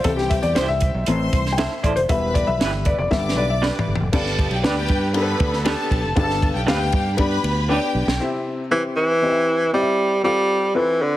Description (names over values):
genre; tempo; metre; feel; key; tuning
uptempo 1960s-style soul; 118 BPM; 4/4; straight; unclear; A4 = 440 Hz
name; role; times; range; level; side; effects
warm studio string section; second line; 0.0-8.1 s; G4 to D6; -27 LUFS; left 1 dB; none
dark upright piano; accompaniment; 0.0-11.1 s; G2 to G5; -23 LUFS; left 3 dB; none
fingered electric bass; bass; 0.0-8.2 s; E1 to G2; -24 LUFS; right 1 dB; none
compact cocktail drum kit; drums; 0.0-8.2 s; crash cymbal, hi-hat, kick drum, ride cymbal, snare drum, toms; -23 LUFS; right 1 dB; none
electric guitar through a small old amp; stabs; 0.6-7.8 s; D4 to C5; -28 LUFS; right 4 dB; tremolo
warm horn section; second line; 2.9-6.0 s; D3 to B4; -30 LUFS; right 2 dB; none
warm tenor saxophone; melody; 8.7-11.2 s; D3 to G3; -17 LUFS; right 1 dB; none
room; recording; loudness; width
light reverb, small room ambience; heavily compressed radio sound, multiband compression; -18 LUFS; side -14 dB against mid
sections
0.0-4.1 A section; 4.1-8.2 B section; 8.2-11.2 C section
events
upright piano solo 0.0-4.1; band accent 2.1-4.1; drum fill 3.1-4.1, 7.7-8.2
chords
0.1 C; 1.1 Am; 2.1 Em; 3.1 G; 8.2 C; 10.2 F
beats
| 0.05 0.56 1.07 1.58 | 2.09 2.60 3.11 3.62 | 4.13 4.64 5.15 5.66 | 6.17 6.68 7.19 7.70 | 8.21 8.71 9.22 9.73 | 10.24 10.75